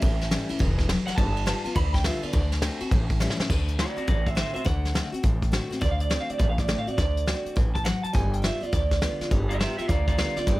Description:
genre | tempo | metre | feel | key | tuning
rockabilly | 207 BPM | 4/4 | swing 64% on 8ths | D mixolydian | A4 = 440 Hz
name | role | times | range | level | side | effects
electric guitar through a small old amp | melody | 0.0-10.6 s | F4 to B5 | -31 LUFS | right 3 dB | tape echo
picked steel-string acoustic guitar | accompaniment | 0.0-10.6 s | A2 to F#4 | -31 LUFS | left 2 dB | none
upright bass | bass | 0.0-10.6 s | E1 to D2 | -27 LUFS | equal | none
vintage brush drum kit | drums | 0.0-10.6 s | crash cymbal, hi-hat, kick drum, ride cymbal, snare drum | -26 LUFS | equal | none
room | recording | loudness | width
little or no reverb | none | -23 LUFS | side -18 dB against mid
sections
0.0-3.5 A section; 3.5-10.6 B section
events
clean electric guitar solo 0.0-3.5; drum fill 3.2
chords
0.0 A7; 1.2 G7; 2.3 D7; 2.9 A7; 3.5 D7; 8.2 G7

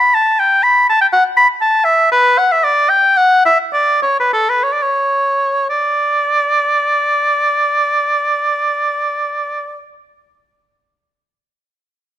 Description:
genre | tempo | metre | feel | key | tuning
classical, baroque-style fantasia for unaccompanied oboe | 54-83 BPM (dotted quarters) | 6/8 | rubato | D major | A4 = 440 Hz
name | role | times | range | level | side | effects
clear oboe | solo | 0.0-9.8 s | A4 to B5 | -12 LUFS | equal | none
room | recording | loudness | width
light reverb | close, detailed microphones | -12 LUFS | side -11 dB against mid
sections
0.0-5.7 A section; 5.7-9.9 B section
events
slowing down 1.4-5.7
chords
none

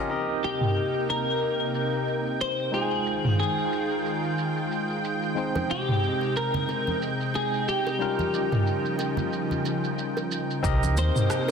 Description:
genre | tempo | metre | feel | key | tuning
sunset chillout | 91 BPM | 4/4 | swing 57% on 16ths | unclear | A4 = 440 Hz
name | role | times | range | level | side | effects
barky tine electric piano | accompaniment | 0.0-11.5 s | G3 to G5 | -31 LUFS | equal | medium stereo tremolo, auto-pan, ping-pong delay
lush unison pad | sustained chords | 0.0-11.5 s | C3 to G5 | -29 LUFS | equal | chorus
deep house drum kit | drums | 0.1-11.5 s | crash cymbal, rim click, shaker, toms | -29 LUFS | right 1 dB | low-pass filter on perc, low-pass filter on toms, soft clipping on snare, low-pass filter on snare, low-pass filter on cymbals, low-pass filter on room
clean electric guitar | melody | 0.4-11.5 s | G4 to C5 | -28 LUFS | left 1 dB | analog chorus, ping-pong delay
congas and bongos | percussion | 5.6-11.5 s | none | -33 LUFS | right 2 dB | none
hollow-body short-scale fingered electric bass | bass | 10.6-11.1 s | C2 to Eb2 | -23 LUFS | equal | none
electronic kick drum | drums | 10.6-10.8 s | none | -29 LUFS | equal | none
room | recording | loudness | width
moderate lush hall reverb, RT60 1.7 s | dense, heavily limited modern master | -24 LUFS | side -6 dB against mid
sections
0.1-10.6 A section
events
none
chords
0.1 Cm7; 2.7 Fm9; 5.4 Abmaj7; 8.0 Eb9; 10.6 Cm7

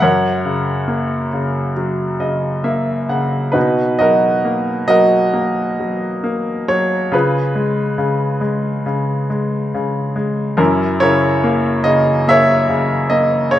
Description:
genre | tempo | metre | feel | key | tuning
classical, lyrical solo piano | 68 BPM | 4/4 | uneven beats, rubato | unclear | A4 = 440 Hz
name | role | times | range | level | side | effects
bright baby grand piano | solo | 0.0-13.6 s | F#2 to F#5 | -14 LUFS | equal | none
room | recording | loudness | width
wet recital hall reverb, RT60 1.6 s | dark, warm production | -14 LUFS | side -12 dB against mid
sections
0.0-13.6 A section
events
grand piano fill 1.8-3.6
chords
0.0 F#; 3.6 Bmaj7; 7.1 C#7; 10.6 F#7

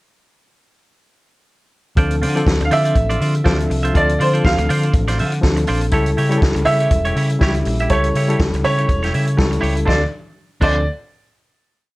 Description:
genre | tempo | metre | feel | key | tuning
disco | 122 BPM | 4/4 | swing 56% on 16ths | D minor | A4 = 440 Hz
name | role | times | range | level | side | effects
reed electric piano | accompaniment | 2.0-10.8 s | F3 to A4 | -22 LUFS | left 2 dB | overdrive, fast tremolo
semi-hollow electric guitar | accompaniment | 2.0-10.8 s | D4 to E5 | -24 LUFS | right 3 dB | none
overdriven fingered electric bass | bass | 2.0-10.8 s | E1 to D3 | -19 LUFS | equal | none
vintage drum kit | drums | 2.0-10.7 s | crash cymbal, hi-hat, kick drum, snare drum | -20 LUFS | equal | none
clear grand piano | melody | 2.6-10.9 s | C5 to F5 | -20 LUFS | right 2 dB | none
room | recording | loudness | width
light reverb | cassette tape | -14 LUFS | side -20 dB against mid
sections
2.0-9.9 verse; 9.9-11.8 final chord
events
none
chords
2.0 Dm7; 5.9 A7; 9.9 Dm7

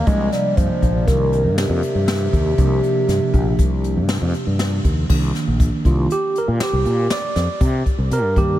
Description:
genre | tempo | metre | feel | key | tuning
progressive instrumental, band music in an uneven meter | 119 BPM | 5/4 | straight | C minor | A4 = 439 Hz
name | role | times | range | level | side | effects
mellow bass clarinet | melody | 0.0-4.6 s | C3 to Ab3 | -22 LUFS | equal | tape echo
tine electric piano | accompaniment | 0.0-8.6 s | C3 to D5 | -22 LUFS | right 2 dB | medium tremolo
fretless electric bass | bass | 0.0-8.6 s | Bb1 to C3 | -20 LUFS | equal | none
jazz brush drum kit | drums | 0.1-8.5 s | crash cymbal, hi-hat, kick drum, snare drum | -21 LUFS | equal | none
room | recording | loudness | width
light reverb, studio ambience | none | -16 LUFS | side -13 dB against mid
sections
0.0-5.1 A section; 5.1-8.6 B section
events
tine electric piano solo 5.1-8.6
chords
0.0 C7sus2; 5.1 Cm9

